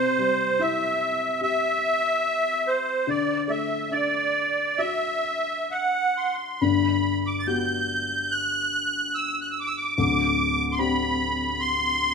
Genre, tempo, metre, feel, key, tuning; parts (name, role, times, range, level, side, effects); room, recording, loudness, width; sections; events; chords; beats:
celtic folk, Celtic slow air; 63-75 BPM; 4/4; rubato; G major; A4 = 436 Hz
musette accordion; melody; 0.0-12.1 s; C5 to A6; -23 LUFS; right 1 dB
felt-muted upright piano; accompaniment; 0.0-12.1 s; D1 to G4; -27 LUFS; left 5 dB
moderate recital hall reverb, RT60 1.5 s; minimal, uncompressed stereo recording; -22 LUFS; side -5 dB against mid
0.0-6.6 A section; 6.6-12.1 B section
0.0 C; 3.1 Dadd9; 6.6 Gmaj7; 10.0 D7sus4
0.60 1.41 2.24 | 3.08 3.92 4.79 5.71 | 6.62 7.47 8.31 9.15 | 9.98 10.79 11.60